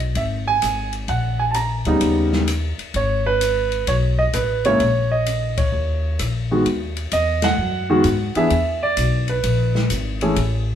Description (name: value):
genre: jazz piano trio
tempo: 129 BPM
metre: 4/4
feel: swing 67% on 8ths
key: G# minor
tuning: A4 = 439 Hz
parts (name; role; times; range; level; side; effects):
- upright bass; bass; 0.0-10.8 s; G#1 to G#2; -22 LUFS; left 1 dB; none
- open jazz drum kit; drums; 0.0-10.5 s; hi-hat, kick drum, ride cymbal, rim click, snare drum; -28 LUFS; left 3 dB; none
- warm grand piano; melody; 0.2-10.4 s; C#3 to A#5; -20 LUFS; right 2 dB; none
room: wet studio reverb, RT60 0.9 s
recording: band playing live in one room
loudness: -17 LUFS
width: side -9 dB against mid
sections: 0.0-6.7 A section; 6.7-10.8 B section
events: band accent 5.5, 7.4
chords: 0.0 N.C.; 1.1 A#aug; 2.0 D#aug7; 2.9 G#m; 4.8 A#madd11; 5.7 D#5; 6.7 G#7(no3); 8.5 E7